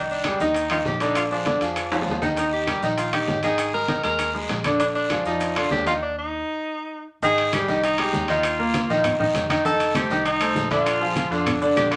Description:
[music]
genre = latin, salsa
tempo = 198 BPM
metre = 4/4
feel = straight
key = unclear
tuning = A4 = 437 Hz
[part]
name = clear tenor saxophone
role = melody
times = 0.0-12.0 s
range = D4 to Bb4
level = -28 LUFS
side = equal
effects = none
[part]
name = bright concert grand piano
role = accompaniment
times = 0.0-12.0 s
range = D3 to Eb5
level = -25 LUFS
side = equal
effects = none
[part]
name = vintage muted fingered electric bass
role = bass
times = 0.0-12.0 s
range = F1 to F2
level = -37 LUFS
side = equal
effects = none
[part]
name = congas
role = percussion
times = 0.1-11.9 s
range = none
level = -35 LUFS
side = equal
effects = none
[part]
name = maracas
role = percussion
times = 0.1-12.0 s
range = none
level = -48 LUFS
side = equal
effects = none
[part]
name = bongos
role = percussion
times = 0.2-12.0 s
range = none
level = -38 LUFS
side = equal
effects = none
[part]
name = guiro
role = percussion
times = 0.2-12.0 s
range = none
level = -39 LUFS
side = equal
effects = none
[part]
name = timbales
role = percussion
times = 0.2-12.0 s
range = none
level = -32 LUFS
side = equal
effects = none
[part]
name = claves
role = percussion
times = 0.3-12.0 s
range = none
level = -37 LUFS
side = equal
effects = none
[sound]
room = wet studio reverb, RT60 0.5 s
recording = none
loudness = -23 LUFS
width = mono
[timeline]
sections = 0.0-7.2 A section; 7.2-12.0 B section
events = drum fill 1.9-2.4; stop 6.0-7.2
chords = 0.0 Abmaj7/C (rootless); 1.2 Bb7; 2.4 Eb; 3.6 Absus2; 4.8 Bb; 6.0 N.C.; 7.2 Abmaj7; 8.4 Ebsus2; 9.7 F7; 10.9 Bb7

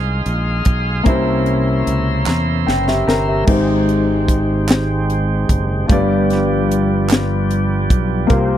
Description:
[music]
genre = slow gospel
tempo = 50 BPM (dotted quarters)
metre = 6/8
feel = straight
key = unclear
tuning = A4 = 438 Hz
[part]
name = warm concert grand piano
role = accompaniment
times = 0.0-8.6 s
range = G2 to Bb5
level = -18 LUFS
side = left 2 dB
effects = none
[part]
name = tonewheel organ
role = sustained chords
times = 0.0-8.6 s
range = Eb3 to C6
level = -23 LUFS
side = right 2 dB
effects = slow rotary speaker
[part]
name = fingered electric bass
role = bass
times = 0.0-8.6 s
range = Gb1 to E2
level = -19 LUFS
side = right 1 dB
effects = none
[part]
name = tight funk drum kit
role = drums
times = 0.3-8.5 s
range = crash cymbal, hi-hat, kick drum, snare drum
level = -17 LUFS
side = equal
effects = none
[part]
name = group handclap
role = percussion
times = 2.3-7.5 s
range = none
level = -23 LUFS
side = right 8 dB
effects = none
[sound]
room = little or no reverb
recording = dry, close 1970s-style studio recording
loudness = -14 LUFS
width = side -11 dB against mid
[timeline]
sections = 0.0-3.5 A section; 3.5-8.6 B section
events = drum fill 2.3-3.5; grand piano fill 2.3-3.5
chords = 0.0 Fm7; 1.1 C7b9; 3.5 Abmaj7; 5.9 G7

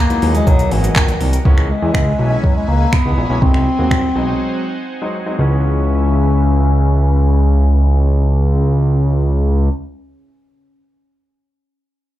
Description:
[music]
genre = dance-pop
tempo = 122 BPM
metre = 4/4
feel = straight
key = C# dorian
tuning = A4 = 440 Hz
[part]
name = mellow bass clarinet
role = melody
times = 0.0-9.7 s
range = D#3 to C#4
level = -20 LUFS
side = left 3 dB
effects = low-pass filter, ping-pong delay, slapback echo
[part]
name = supersaw pad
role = sustained chords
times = 0.1-9.7 s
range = B2 to G#5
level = -31 LUFS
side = right 1 dB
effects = phaser, sidechain pumping, low-pass filter
[part]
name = clear concert grand piano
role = accompaniment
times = 0.1-9.7 s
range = D#3 to F#4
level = -25 LUFS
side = left 1 dB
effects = sidechain pumping, low-pass filter, slapback echo
[part]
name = smooth R&B drum kit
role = drums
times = 0.1-4.0 s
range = finger snaps, handclaps, hi-hat, kick drum, shaker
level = -15 LUFS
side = equal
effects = none
[part]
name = fat analog bass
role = bass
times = 0.2-9.7 s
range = G#1 to E2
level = -14 LUFS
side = equal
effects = sidechain pumping
[sound]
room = little or no reverb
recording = live gig heard through the venue's PA, club reverb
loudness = -12 LUFS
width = side -14 dB against mid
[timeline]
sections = 0.0-1.5 A section; 1.5-5.4 B section; 5.4-9.3 C section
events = filter sweep 1.5-5.4; break 4.4-5.4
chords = 0.5 Bmaj7; 1.5 C#m7; 3.4 G#7; 5.4 C#m7

